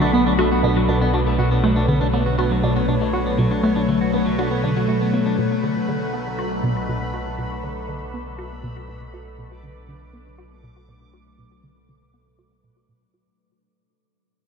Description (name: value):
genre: ambient, sequencer-driven space music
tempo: 120 BPM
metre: 4/4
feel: straight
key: unclear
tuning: A4 = 440 Hz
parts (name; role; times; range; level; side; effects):
- evolving wavetable pad; sustained chords; 0.0-13.4 s; B2 to A4; -22 LUFS; left 1 dB; phaser, built-in reverb
- clean electric guitar; arpeggios; 0.0-5.4 s; F#3 to F#4; -26 LUFS; right 1 dB; auto-pan, ping-pong delay
- round analog bass; bass; 0.0-13.4 s; B1; -29 LUFS; equal; none
- bubbling stepped-filter texture; texture; 0.0-13.4 s; B4 to D6; -31 LUFS; equal; chorus, built-in reverb
- resonant blip pluck; riff; 0.1-13.2 s; B2 to F#4; -24 LUFS; equal; phaser, ping-pong delay
room: wet huge ambient reverb, RT60 7.9 s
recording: none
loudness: -18 LUFS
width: side -6 dB against mid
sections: 0.0-13.4 A section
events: fade-out 0.0-13.4; filter sweep on synth arpeggio sound 0.0-13.4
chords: 0.0 Bm7